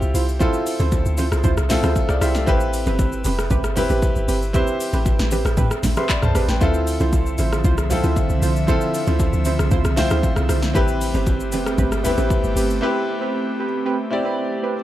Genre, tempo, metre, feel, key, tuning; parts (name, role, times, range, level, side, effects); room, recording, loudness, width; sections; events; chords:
amapiano; 116 BPM; 4/4; straight; D minor; A4 = 440 Hz
clear baby grand piano; accompaniment; 0.0-14.8 s; B3 to C6; -24 LUFS; left 1 dB
deep log drum bass; bass; 0.0-12.8 s; F1 to A2; -21 LUFS; equal
deep house drum kit; drums; 0.0-12.8 s; handclaps, hi-hat, kick drum, rim click, shaker, snare drum, toms; -22 LUFS; equal; overdrive
deep mellow chord stab; stabs; 0.1-14.7 s; C4 to C5; -26 LUFS; right 4 dB; chorus, tape echo
congas and bongos; percussion; 0.4-12.4 s; -28 LUFS; right 1 dB
airy breathy pad; sustained chords; 6.9-14.8 s; D3 to E5; -26 LUFS; right 1 dB; chorus
little or no reverb; dark, warm production; -17 LUFS; side -14 dB against mid
0.0-14.8 A section
break 12.8-14.8
0.0 Dm9; 2.5 Am9; 6.6 Dm9; 10.8 Am9